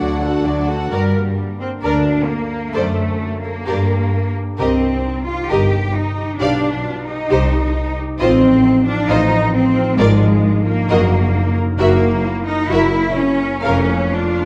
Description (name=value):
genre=classical, dramatic, fast romantic movement for symphony orchestra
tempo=132 BPM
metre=4/4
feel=rubato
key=G minor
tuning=A4 = 440 Hz
part: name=warm symphonic violin section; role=melody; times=0.0-13.9 s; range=D5 to F#5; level=-30 LUFS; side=equal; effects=none
part: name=warm symphonic violin section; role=second line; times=0.0-13.9 s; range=F#4 to F#5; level=-26 LUFS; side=equal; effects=none
part: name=rich symphonic viola section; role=accompaniment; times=0.0-14.5 s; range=D3 to Bb4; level=-25 LUFS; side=equal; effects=none
part: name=warm French horn section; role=sustained chords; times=0.0-0.7 s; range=A3 to D4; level=-26 LUFS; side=equal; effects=none
part: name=concert harp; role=arpeggios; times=0.0-14.5 s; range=F2 to D5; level=-25 LUFS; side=equal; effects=none
part: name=rich chamber double bass section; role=bass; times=0.0-14.1 s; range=F1 to G2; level=-23 LUFS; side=equal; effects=none
part: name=rich symphonic cello section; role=bass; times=0.0-14.5 s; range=D2 to G4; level=-21 LUFS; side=equal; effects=none
room=moderate concert hall reverb, RT60 1.9 s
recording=dark, warm production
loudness=-17 LUFS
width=mono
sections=0.9-14.5 A section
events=none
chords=0.0 D; 0.9 Gm; 2.8 D7/F#; 3.7 Gm; 4.6 Cm7; 6.4 G7/B; 7.3 Cm; 8.2 F7/A; 10.0 Bb7/Ab; 10.9 Ebm/Gb; 11.8 Gb7; 13.6 Bb/F